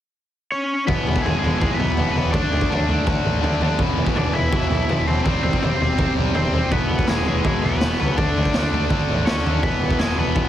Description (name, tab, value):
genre	punk rock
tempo	164 BPM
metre	4/4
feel	straight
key	unclear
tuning	A4 = 440 Hz
part	crunchy overdriven guitar	melody	0.5-10.5 s	G#3 to E5	-25 LUFS	equal	none
part	tight distorted guitar	riff	0.9-10.5 s	E2 to D4	-25 LUFS	left 12 dB	distortion
part	tight distorted guitar	riff	0.9-10.5 s	E2 to D4	-26 LUFS	right 10 dB	distortion
part	fuzz picked electric bass	bass	0.9-10.5 s	E1 to D#2	-25 LUFS	equal	overdrive
part	raw garage drum kit	drums	0.9-10.5 s	kick drum, snare drum, toms	-22 LUFS	equal	none
room	little or no reverb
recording	heavily compressed radio sound, multiband compression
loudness	-18 LUFS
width	side -11 dB against mid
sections	0.9-10.5 A section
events	none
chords	0.0 N.C.; 0.9 E; 2.3 D5; 3.8 E5; 5.3 C/E; 6.7 E; 8.2 D5; 9.6 E